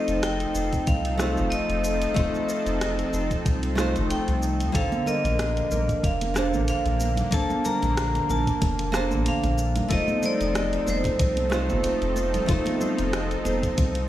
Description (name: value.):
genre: sunset chillout.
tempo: 93 BPM.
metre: 4/4.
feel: swing 54% on 16ths.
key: unclear.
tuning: A4 = 436 Hz.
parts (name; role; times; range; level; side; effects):
vibraphone with hard mallets; melody; 0.0-14.1 s; C5 to Bb5; -28 LUFS; equal; tape echo.
nylon-string guitar; accompaniment; 0.0-14.1 s; D3 to A5; -30 LUFS; moving between left 3 dB and right 5 dB; auto-pan.
lush unison pad; sustained chords; 0.0-14.1 s; D3 to A4; -30 LUFS; equal; chorus.
concert harp; arpeggios; 0.0-14.1 s; A4 to Eb5; -36 LUFS; left 2 dB; tape echo.
warm sub bass; bass; 0.1-14.1 s; F1 to C2; -27 LUFS; equal; none.
smooth R&B drum kit; drums; 0.1-14.1 s; hi-hat, rim click, shaker; -34 LUFS; equal; none.
electronic kick drum; drums; 0.7-13.9 s; none; -25 LUFS; equal; none.
congas; percussion; 4.9-13.9 s; none; -32 LUFS; right 3 dB; none.
room: light reverb.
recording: played on a big sound system in a bare room, stone room reverb.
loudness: -22 LUFS.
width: side -13 dB against mid.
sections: 0.0-14.1 A section.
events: none.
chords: 0.0 F7; 4.7 Bbmaj9; 9.9 F7.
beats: 0.23 0.87 1.52 | 2.16 2.81 3.46 4.10 | 4.75 5.39 6.04 6.68 | 7.33 7.97 8.62 9.26 | 9.91 10.55 11.20 11.84 | 12.49 13.13 13.78.